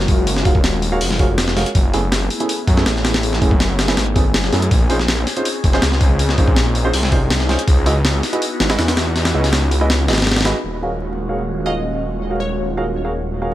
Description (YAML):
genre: drum and bass, jungle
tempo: 162 BPM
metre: 4/4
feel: straight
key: Eb minor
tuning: A4 = 438 Hz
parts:
  - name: airy breathy pad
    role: sustained chords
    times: 0.0-13.5 s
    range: Ab3 to Ab4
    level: -25 LUFS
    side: equal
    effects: chorus, phaser
  - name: detuned saw bass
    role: bass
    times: 0.0-13.5 s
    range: Eb1 to Gb2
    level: -19 LUFS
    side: equal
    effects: none
  - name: breakbeat sampler-style drum kit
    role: drums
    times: 0.0-10.5 s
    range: hi-hat, kick drum, snare drum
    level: -17 LUFS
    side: equal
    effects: none
  - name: warm concert grand piano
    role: stabs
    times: 0.5-13.5 s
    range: A3 to F5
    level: -23 LUFS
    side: right 2 dB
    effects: vintage 12-bit sampler grit, low-pass filter, dub echo
  - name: glassy wavetable pluck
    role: melody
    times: 11.7-12.7 s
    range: Db5 to Eb5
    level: -28 LUFS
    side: equal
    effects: chorus, dub echo
room: light reverb, digital ambience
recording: vinyl crackle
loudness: -14 LUFS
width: side -14 dB against mid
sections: 0.0-10.6 A section; 10.6-13.5 B section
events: filter sweep on grand piano 10.6-13.5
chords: 0.0 Ebm11; 1.8 Gbm11; 4.7 Bbm11; 7.7 Dbm11; 10.6 Ebm11